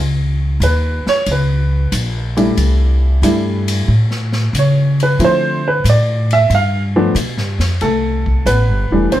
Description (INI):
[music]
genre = jazz piano trio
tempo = 92 BPM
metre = 4/4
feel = swing 69% on 8ths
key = C major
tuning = A4 = 443 Hz
[part]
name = upright bass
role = bass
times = 0.0-9.2 s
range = E1 to D3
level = -15 LUFS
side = equal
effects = none
[part]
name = warm upright piano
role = melody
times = 0.6-9.2 s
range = E3 to F5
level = -16 LUFS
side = right 1 dB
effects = none
[part]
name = swinging big-band drum kit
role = drums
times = 0.6-9.2 s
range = hi-hat, kick drum, ride cymbal, snare drum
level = -25 LUFS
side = left 2 dB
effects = none
[sound]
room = moderate studio ambience, RT60 0.5 s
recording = heard from further back in the room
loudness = -13 LUFS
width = side -13 dB against mid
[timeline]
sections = 0.0-7.8 A section; 7.8-9.2 B section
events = upright piano solo 0.0-7.8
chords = 0.0 Dbsus2; 2.6 C69; 3.9 A; 5.2 Dm7; 6.5 G7; 7.8 C6